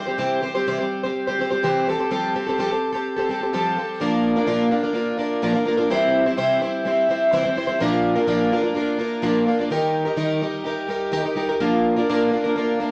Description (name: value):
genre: rock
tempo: 126 BPM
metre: 4/4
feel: straight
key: unclear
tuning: A4 = 441 Hz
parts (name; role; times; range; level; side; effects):
- picked plugged-in twelve-string acoustic guitar; solo; 0.0-12.9 s; Bb2 to C5; -22 LUFS; equal; none
room: moderate large studio reverb, RT60 1.1 s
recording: none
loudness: -22 LUFS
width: mono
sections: 0.0-4.0 A section; 4.0-12.9 B section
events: none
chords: 0.0 C; 1.9 Fadd9; 4.0 Bb; 5.9 C; 7.8 Bb; 9.7 Eb; 11.6 Bb